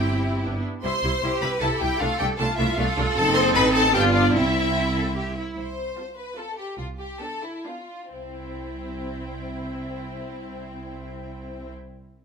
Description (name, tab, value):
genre	quick classical-period movement for string orchestra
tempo	126-156 BPM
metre	3/4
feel	straight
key	C major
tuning	A4 = 440 Hz
part	rich studio violin section	melody	0.0-11.7 s	D5 to C6	-27 LUFS	left 3 dB	none
part	clear studio violin section	second line	0.0-11.7 s	C4 to C5	-28 LUFS	left 2 dB	none
part	rich studio viola section	accompaniment	0.0-11.7 s	G3 to F4	-27 LUFS	equal	none
part	clear studio cello section	bass	0.0-11.7 s	C2 to A4	-31 LUFS	right 2 dB	none
part	rich studio double bass section	bass	0.0-11.7 s	F#1 to C2	-29 LUFS	right 2 dB	none
room	wet large studio reverb, RT60 1.2 s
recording	minimal, uncompressed stereo recording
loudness	-21 LUFS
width	side -6 dB against mid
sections	0.0-5.6 A section; 5.6-8.1 B section; 8.1-10.9 C section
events	slowing down 5.0-8.1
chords	0.4 G (rootless); 0.8 C; 2.0 Dm7/C; 3.2 F#dim7; 3.9 G7; 4.3 C; 5.6 F/C; 6.8 G7/C; 8.1 C